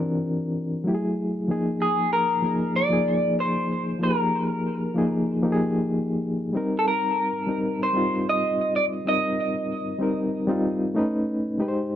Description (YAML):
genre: soul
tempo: 95 BPM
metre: 4/4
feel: straight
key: unclear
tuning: A4 = 440 Hz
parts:
  - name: electric guitar through a small old amp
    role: melody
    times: 0.0-10.3 s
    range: G4 to Eb5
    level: -24 LUFS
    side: equal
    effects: wide subtle chorus, tape echo
  - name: reed electric piano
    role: accompaniment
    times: 0.0-12.0 s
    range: E3 to C5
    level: -24 LUFS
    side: left 1 dB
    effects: overdrive, fast tremolo
room: light reverb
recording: dry, close 1970s-style studio recording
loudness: -22 LUFS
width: side -10 dB against mid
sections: 0.0-1.5 A section; 1.5-11.6 B section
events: none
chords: 0.0 C9; 0.9 Gbm9; 1.5 Bb7sus4; 6.5 Cm7; 11.0 B9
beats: 0.23 0.86 | 1.49 2.12 2.75 3.39 | 4.02 4.65 5.28 5.91 | 6.54 7.17 7.81 8.44 | 9.07 9.70 10.33 10.96 | 11.59